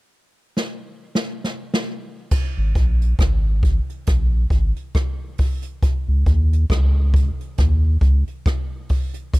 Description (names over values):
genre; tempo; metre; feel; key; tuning
dub reggae; 68 BPM; 4/4; swing 57% on 16ths; unclear; A4 = 440 Hz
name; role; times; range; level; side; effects
jazz brush drum kit; drums; 0.6-9.4 s; crash cymbal, hi-hat, kick drum, rim click, snare drum; -20 LUFS; equal; none
warm sub bass; bass; 2.6-8.2 s; G#1 to D#2; -17 LUFS; equal; none
room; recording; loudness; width
little or no reverb; dark, warm production; -18 LUFS; side -20 dB against mid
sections
0.0-2.3 A section; 2.3-9.4 B section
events
drum fill 0.6-2.3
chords
none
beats
0.55 1.43 | 2.31 3.19 4.07 4.95 | 5.83 6.70 7.58 8.46 | 9.33